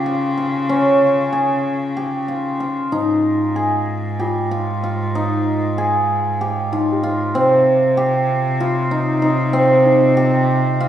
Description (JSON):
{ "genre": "contemporary instrumental, chamber music in an uneven meter", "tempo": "190 BPM (eighths)", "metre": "7/8", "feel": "straight", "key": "unclear", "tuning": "A4 = 440 Hz", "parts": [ { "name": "cimbalom", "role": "arpeggios", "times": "0.0-10.9 s", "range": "C4 to Ab4", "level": "-17 LUFS", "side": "right 1 dB", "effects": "none" }, { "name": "rich cello", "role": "bass", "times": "0.0-10.9 s", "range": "Ab2 to Db3", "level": "-21 LUFS", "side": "equal", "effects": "none" }, { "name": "worn celesta", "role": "texture", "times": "2.9-10.9 s", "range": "Eb4 to G4", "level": "-24 LUFS", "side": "left 5 dB", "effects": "none" } ], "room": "wet scoring stage reverb, RT60 1.6 s", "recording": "heard from further back in the room", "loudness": "-15 LUFS", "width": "side -10 dB against mid", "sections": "0.0-10.9 A section", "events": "none", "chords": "0.0 Db; 2.9 Ab5; 7.3 Cm", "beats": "0.06 0.38 | 0.69 1.01 1.33 1.64 1.96 2.28 2.60 | 2.92 3.24 3.56 3.88 4.20 4.51 4.83 | 5.15 5.46 5.78 6.09 6.40 6.72 7.03 | 7.34 7.66 7.97 8.28 8.60 8.91 9.23 | 9.54 9.86 10.17 10.49 10.81" }